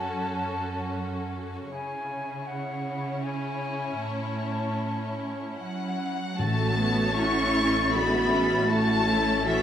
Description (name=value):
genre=cinematic, emotional film score for orchestra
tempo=78 BPM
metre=3/4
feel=rubato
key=A major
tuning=A4 = 440 Hz
part: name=warm symphonic violin section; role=melody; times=0.0-9.6 s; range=A4 to C#6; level=-32 LUFS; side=left 4 dB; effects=none
part: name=bright concert flute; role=second line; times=0.0-9.6 s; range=F#5 to A6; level=-32 LUFS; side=left 2 dB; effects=none
part: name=clear symphonic violin section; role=second line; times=0.0-9.6 s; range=E4 to E5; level=-36 LUFS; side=left 3 dB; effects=none
part: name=bright symphonic viola section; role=accompaniment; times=0.0-9.6 s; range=D3 to F#4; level=-33 LUFS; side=right 2 dB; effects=none
part: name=clear symphonic cello section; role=bass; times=0.0-9.6 s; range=F#2 to C#4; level=-31 LUFS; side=right 2 dB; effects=none
part: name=mellow clarinet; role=second line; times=6.4-9.6 s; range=C#4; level=-36 LUFS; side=left 2 dB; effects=none
part: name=clear symphonic double bass section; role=bass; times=6.4-9.6 s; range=A1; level=-32 LUFS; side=right 3 dB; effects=none
part: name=timpani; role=percussion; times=6.4-7.5 s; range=A2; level=-30 LUFS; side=equal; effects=none
part: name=mellow French horn section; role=sustained chords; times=7.2-9.6 s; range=C#4 to F#4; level=-29 LUFS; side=left 1 dB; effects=none
room=moderate scoring stage reverb, RT60 1.7 s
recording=none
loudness=-25 LUFS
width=side -9 dB against mid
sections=0.0-6.4 A section; 6.4-9.6 A section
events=none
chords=0.0 F#m; 1.7 C#m; 4.0 A